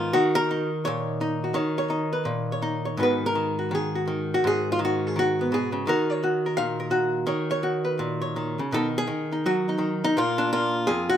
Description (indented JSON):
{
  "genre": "solo jazz",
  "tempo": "168 BPM",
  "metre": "4/4",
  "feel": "swing 63% on 8ths, rubato",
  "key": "Eb minor",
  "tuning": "A4 = 440 Hz",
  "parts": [
    { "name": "archtop guitar, miked and amplified", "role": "solo", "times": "0.0-11.2 s", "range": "F2 to F5", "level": "-22 LUFS", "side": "equal", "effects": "none" }
  ],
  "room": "light reverb",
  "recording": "minimal, uncompressed stereo recording",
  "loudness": "-23 LUFS",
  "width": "side -10 dB against mid",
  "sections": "0.0-11.2 A section",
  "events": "none",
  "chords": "0.1 Ebm7; 3.0 Abm7; 5.9 Ebm7; 8.7 B; 10.2 Bb"
}